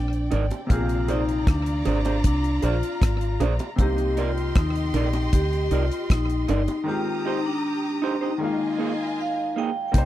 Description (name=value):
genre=lovers rock reggae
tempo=78 BPM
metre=4/4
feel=straight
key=unclear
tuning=A4 = 440 Hz
part: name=vibraphone with medium hard mallets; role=melody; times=0.0-10.1 s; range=D4 to G5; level=-27 LUFS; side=left 1 dB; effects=tape echo
part: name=warm symphonic violin section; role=second line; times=0.0-9.9 s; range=C4 to Eb6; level=-34 LUFS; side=left 2 dB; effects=none
part: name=clear baby grand piano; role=accompaniment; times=0.0-10.1 s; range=C3 to D5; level=-33 LUFS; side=left 1 dB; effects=slapback echo
part: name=deep dub fingered electric bass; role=bass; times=0.0-10.1 s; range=G1 to Eb2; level=-24 LUFS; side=equal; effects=none
part: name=damped 70s drum kit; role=drums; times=0.1-10.1 s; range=hi-hat, kick drum, rim click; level=-21 LUFS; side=equal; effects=none
part: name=electric guitar through a small old amp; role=stabs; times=0.3-9.7 s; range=Bb3 to D5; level=-28 LUFS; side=right 6 dB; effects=none
part: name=bongos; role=percussion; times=0.3-6.9 s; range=none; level=-32 LUFS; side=right 6 dB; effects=none
room=little or no reverb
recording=dry, close 1970s-style studio recording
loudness=-21 LUFS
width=side -13 dB against mid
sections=0.0-9.9 A section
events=break 6.9-9.9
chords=0.0 Cm9; 0.7 Bb9; 3.8 Cm9; 6.9 Abmaj7; 8.4 Bb7sus4